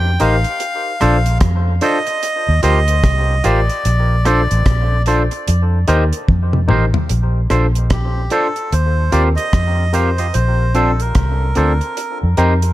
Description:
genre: lovers rock reggae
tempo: 74 BPM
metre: 4/4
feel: swing 62% on 16ths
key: Bb major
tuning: A4 = 440 Hz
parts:
  - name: melodica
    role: melody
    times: 0.0-12.2 s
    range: G4 to G5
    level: -21 LUFS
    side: equal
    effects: tape echo
  - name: vintage muted fingered electric bass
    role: bass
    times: 0.0-12.7 s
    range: A1 to F2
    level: -15 LUFS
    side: equal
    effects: none
  - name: barky tine electric piano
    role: accompaniment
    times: 0.2-12.7 s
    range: C4 to C5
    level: -22 LUFS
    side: left 2 dB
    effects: dub echo
  - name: twangy electric guitar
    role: stabs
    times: 0.2-12.5 s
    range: D4 to C5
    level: -22 LUFS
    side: right 5 dB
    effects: none
  - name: deep reggae drum kit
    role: drums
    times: 0.2-12.7 s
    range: hi-hat, kick drum, rim click, toms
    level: -20 LUFS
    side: equal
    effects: gated reverb
room: studio ambience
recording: none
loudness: -13 LUFS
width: side -15 dB against mid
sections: 0.0-7.1 A section; 7.1-12.7 B section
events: drum fill 6.3-7.1; melodica solo 7.1-12.7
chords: 0.0 F7sus4; 0.6 Bbmaj9; 2.2 Eb69; 3.8 Bbmaj9; 5.5 F7sus4; 7.1 Bbmaj9; 8.7 Eb69; 10.3 Bbmaj9; 12.0 F7sus4

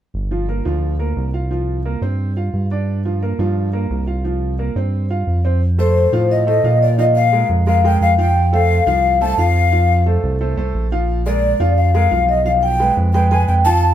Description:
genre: jazz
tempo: 175 BPM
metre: 4/4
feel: straight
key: F mixolydian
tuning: A4 = 440 Hz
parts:
  - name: round analog bass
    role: bass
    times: 0.1-13.9 s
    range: G1 to Bb2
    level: -17 LUFS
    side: right 1 dB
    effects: none
  - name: warm upright piano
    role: accompaniment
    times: 0.3-13.9 s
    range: F3 to F5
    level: -23 LUFS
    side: right 2 dB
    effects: none
  - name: vibraphone with soft mallets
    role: melody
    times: 5.8-13.9 s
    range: C5 to A5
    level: -17 LUFS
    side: left 2 dB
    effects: none
  - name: breathy jazz flute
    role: second line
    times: 5.8-13.9 s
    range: C5 to A5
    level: -23 LUFS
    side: left 3 dB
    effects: none
room: moderate stone room reverb, RT60 1.2 s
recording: band playing live in one room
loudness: -14 LUFS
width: side -10 dB against mid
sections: 0.1-5.6 A section; 5.6-13.9 B section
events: none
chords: 0.1 Gm7; 1.5 C7sus4; 5.6 F7; 7.0 Bb5; 8.4 F; 11.1 Bb7; 12.5 G7b9

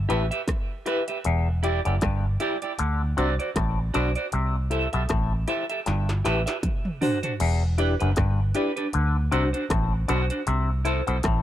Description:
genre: roots reggae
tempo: 78 BPM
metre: 4/4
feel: swing 57% on 16ths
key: E minor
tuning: A4 = 440 Hz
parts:
  - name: vintage muted fingered electric bass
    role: bass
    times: 0.0-11.4 s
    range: E1 to D2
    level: -24 LUFS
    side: equal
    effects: none
  - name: clean electric guitar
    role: accompaniment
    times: 0.1-11.2 s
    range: D4 to E5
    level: -29 LUFS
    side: right 4 dB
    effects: harmonic tremolo, dub echo
  - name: auto-wah clav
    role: riff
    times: 0.1-11.4 s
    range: E2 to D3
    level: -30 LUFS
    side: left 5 dB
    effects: none
  - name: reed electric piano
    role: stabs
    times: 0.1-11.0 s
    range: D4 to D5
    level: -30 LUFS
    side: left 4 dB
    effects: overdrive, fast tremolo
  - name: industrial drum kit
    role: drums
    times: 0.1-11.4 s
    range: crash cymbal, hi-hat, kick drum, rim click, snare drum, toms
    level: -29 LUFS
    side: equal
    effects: distortion
room: light reverb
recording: none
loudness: -22 LUFS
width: side -12 dB against mid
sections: 0.0-7.4 A section; 7.4-11.4 B section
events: drum fill 5.9-7.4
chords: 0.0 G6; 1.2 Em7; 2.8 D7; 4.3 C6; 5.9 G6; 6.6 D7; 7.4 Em7; 8.9 D7; 10.5 C6

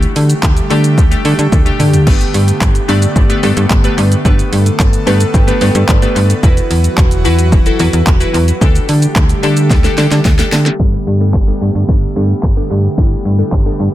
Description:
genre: dance-pop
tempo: 110 BPM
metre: 4/4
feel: straight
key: G major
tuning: A4 = 443 Hz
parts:
  - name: glassy digital keys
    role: accompaniment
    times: 0.0-13.9 s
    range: G3 to A5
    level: -18 LUFS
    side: left 2 dB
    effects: chorus, sidechain pumping, dub echo
  - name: airy breathy pad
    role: sustained chords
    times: 0.0-13.9 s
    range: D3 to A4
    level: -20 LUFS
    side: right 1 dB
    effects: chorus, sidechain pumping
  - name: slap-like FM bass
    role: bass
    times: 0.0-13.9 s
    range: E1 to D3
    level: -12 LUFS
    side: equal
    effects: sidechain pumping
  - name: deep house drum kit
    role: drums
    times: 0.0-13.9 s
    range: crash cymbal, handclaps, hi-hat, kick drum, shaker, snare drum, toms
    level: -13 LUFS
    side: equal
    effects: dub echo
room: digital ambience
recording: echo-heavy mix, low-pass filter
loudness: -9 LUFS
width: side -14 dB against mid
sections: 0.0-10.8 A section; 10.8-13.9 B section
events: drum fill 1.5-2.1, 9.7-10.8; synth keys fill 4.8-6.4; filter sweep 10.8-13.9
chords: 0.0 Dsus4; 2.1 Gadd9; 6.4 Esus2; 8.6 Dsus4; 10.8 Gadd9

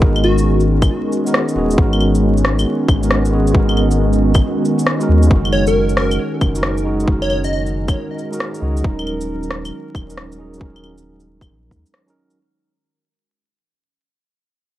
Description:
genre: future garage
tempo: 136 BPM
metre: 4/4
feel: swing 65% on 16ths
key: G# minor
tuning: A4 = 440 Hz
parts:
  - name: tine electric piano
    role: accompaniment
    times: 0.0-12.4 s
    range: F#3 to A#4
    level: -22 LUFS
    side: equal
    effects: medium tremolo, sidechain pumping, analog delay
  - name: warbly tape-like pad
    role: sustained chords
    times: 0.0-12.4 s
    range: D#3 to A#4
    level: -20 LUFS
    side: equal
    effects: chorus, built-in reverb, sidechain pumping
  - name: warm sub bass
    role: bass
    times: 0.0-11.8 s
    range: D#1 to D#2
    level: -18 LUFS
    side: equal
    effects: tube saturation, sidechain pumping
  - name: electronic kick drum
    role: drums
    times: 0.0-11.8 s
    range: none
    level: -16 LUFS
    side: equal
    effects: none
  - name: plucky unison lead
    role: melody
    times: 0.2-0.6, 5.5-7.6 s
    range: F#4 to D#5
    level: -22 LUFS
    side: equal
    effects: phaser, analog delay
  - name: electronic claves, shaker and rim click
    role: drums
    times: 0.2-12.4 s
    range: none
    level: -22 LUFS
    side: left 1 dB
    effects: none
room: moderate lush hall reverb, RT60 1.7 s, digital ambience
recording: vinyl crackle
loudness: -14 LUFS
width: side -14 dB against mid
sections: 0.0-12.4 A section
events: fade-out 5.3-12.4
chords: 0.0 G#m9; 5.3 F#69; 8.8 D#m7

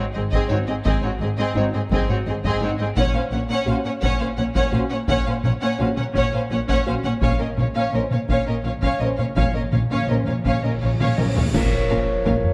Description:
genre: cinematic, epic orchestral film score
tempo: 56 BPM (dotted quarters)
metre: 6/8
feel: straight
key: unclear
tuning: A4 = 437 Hz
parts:
  - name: rich symphonic violin section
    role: melody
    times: 0.0-12.3 s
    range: Db5 to Gb5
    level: -32 LUFS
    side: equal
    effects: none
  - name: warm symphonic violin section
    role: second line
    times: 0.0-12.3 s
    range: Gb4 to Db5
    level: -30 LUFS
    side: equal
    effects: none
  - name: rich symphonic viola section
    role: accompaniment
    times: 0.0-12.3 s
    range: C4 to Db4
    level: -32 LUFS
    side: equal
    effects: none
  - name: warm symphonic cello section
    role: bass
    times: 0.0-12.3 s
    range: Ab2 to Bb2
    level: -28 LUFS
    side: equal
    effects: none
  - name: rich symphonic double bass section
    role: bass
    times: 0.2-12.3 s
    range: Ab1 to Bb1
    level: -30 LUFS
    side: equal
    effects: none
  - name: taiko ensemble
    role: drums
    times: 0.3-12.5 s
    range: none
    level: -27 LUFS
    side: equal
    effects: none
  - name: dark French horn section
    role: sustained chords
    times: 0.5-12.5 s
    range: F3 to C5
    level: -31 LUFS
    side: equal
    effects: none
  - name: cymbal swell, clash cymbals and concert bass drum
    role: percussion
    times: 7.2-12.5 s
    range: none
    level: -33 LUFS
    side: equal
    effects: none
  - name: timpani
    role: percussion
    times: 7.2-12.5 s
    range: Bb2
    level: -30 LUFS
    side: equal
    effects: none
  - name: cymbal swell and impact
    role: sound effects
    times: 10.9-12.5 s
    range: none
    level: -36 LUFS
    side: equal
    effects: none
  - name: warm trumpet section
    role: stabs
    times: 11.6-12.5 s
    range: Db5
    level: -28 LUFS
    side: equal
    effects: none
room: moderate scoring stage reverb, RT60 1.8 s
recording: dark, warm production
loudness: -21 LUFS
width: mono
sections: 0.0-11.6 A section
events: timpani fill 7.2-11.6; cymbal swell 10.9-11.6; drum fill 11.0-11.6; band accent 11.6-12.3; impact 11.6-12.5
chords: 0.0 Ab; 3.0 Gb/Bb; 7.2 Bbm

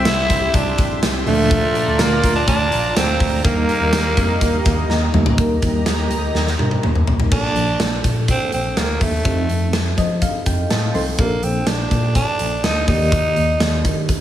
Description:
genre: 1980s-style pop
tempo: 124 BPM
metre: 4/4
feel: straight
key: Bb major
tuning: A4 = 440 Hz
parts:
  - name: growling tenor saxophone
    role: melody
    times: 0.0-14.1 s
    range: A3 to E4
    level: -21 LUFS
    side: right 1 dB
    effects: digital delay
  - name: FM electric piano with tremolo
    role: accompaniment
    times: 0.0-14.2 s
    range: Bb2 to C6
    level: -24 LUFS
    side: equal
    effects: phaser
  - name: warm analog pad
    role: sustained chords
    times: 0.0-7.3 s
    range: F4 to C6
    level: -27 LUFS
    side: equal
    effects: chorus
  - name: warm horn section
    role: stabs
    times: 0.0-5.1 s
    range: G3 to E5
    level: -26 LUFS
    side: left 2 dB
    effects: none
  - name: mellow tine electric piano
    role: bass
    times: 0.0-14.1 s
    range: Bb1 to F3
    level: -21 LUFS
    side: equal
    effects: medium stereo tremolo
  - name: big rock drum kit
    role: drums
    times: 0.1-14.2 s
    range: crash cymbal, hi-hat, kick drum, snare drum, tambourine, toms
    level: -20 LUFS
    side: equal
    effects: gated reverb
room: light reverb, small room ambience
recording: none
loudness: -15 LUFS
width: side -11 dB against mid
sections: 0.0-5.4 A section; 5.4-7.3 B section; 7.3-14.2 C section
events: FM electric piano fill 4.7-5.4, 9.7-11.2; drum fill 4.9-5.4, 6.3-7.3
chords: 0.0 C; 1.3 Bb/D; 3.4 Eb; 7.3 Bbmaj7; 9.3 F7; 11.2 Bbmaj7; 12.9 Ebmaj7

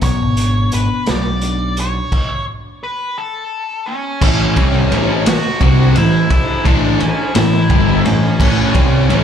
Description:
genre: quiet-loud alternative rock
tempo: 57 BPM (dotted quarters)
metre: 6/8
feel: straight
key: A major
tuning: A4 = 440 Hz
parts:
  - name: octave-fuzz lead guitar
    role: melody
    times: 0.0-9.2 s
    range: C#4 to F#5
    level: -21 LUFS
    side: equal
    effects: distortion, slapback echo
  - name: clean electric guitar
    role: arpeggios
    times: 0.0-2.1 s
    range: B2 to F#4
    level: -23 LUFS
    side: left 5 dB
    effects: analog chorus, slapback echo, tape echo
  - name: growling picked electric bass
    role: bass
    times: 0.0-9.2 s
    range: G1 to C2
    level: -16 LUFS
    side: equal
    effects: overdrive
  - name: raw garage drum kit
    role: drums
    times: 0.0-9.2 s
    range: crash cymbal, hi-hat, kick drum, ride cymbal, snare drum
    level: -16 LUFS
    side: equal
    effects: none
  - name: fuzz guitar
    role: riff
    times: 4.2-9.2 s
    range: G2 to C4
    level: -18 LUFS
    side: left 10 dB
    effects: distortion, slapback echo
  - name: sludgy distorted guitar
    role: riff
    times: 4.2-9.2 s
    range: G2 to C4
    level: -19 LUFS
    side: right 11 dB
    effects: overdrive
room: little or no reverb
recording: live gig heard through the venue's PA, club reverb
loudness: -12 LUFS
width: side -8 dB against mid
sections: 0.0-4.2 A section; 4.2-9.2 B section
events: stop 2.1-4.2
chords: 0.0 Bmadd9; 2.1 N.C.; 4.2 A

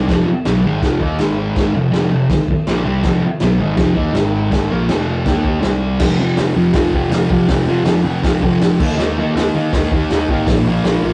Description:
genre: garage rock duo or trio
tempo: 162 BPM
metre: 4/4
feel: straight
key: F minor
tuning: A4 = 440 Hz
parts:
  - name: thick fuzz guitar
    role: riff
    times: 0.0-11.1 s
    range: F2 to Eb4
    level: -18 LUFS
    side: equal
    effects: distortion
  - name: growling picked electric bass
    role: bass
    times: 0.0-11.1 s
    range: F1 to Eb3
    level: -27 LUFS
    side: equal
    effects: overdrive
  - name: vintage drum kit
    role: drums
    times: 0.1-10.9 s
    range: crash cymbal, hi-hat, kick drum, snare drum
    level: -21 LUFS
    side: equal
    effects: none
room: wet studio reverb, RT60 0.6 s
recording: rough rehearsal-room recording, warm saturation, cassette tape, nothing above 10.5 kHz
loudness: -16 LUFS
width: mono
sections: 0.0-6.0 A section; 6.0-11.1 B section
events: none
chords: 0.0 Fm; 1.2 Ab5; 1.7 Fm; 4.2 Ab5; 4.5 Fm; 5.3 Eb5; 5.6 C5; 6.0 F5; 8.8 Eb5; 10.5 Bb5

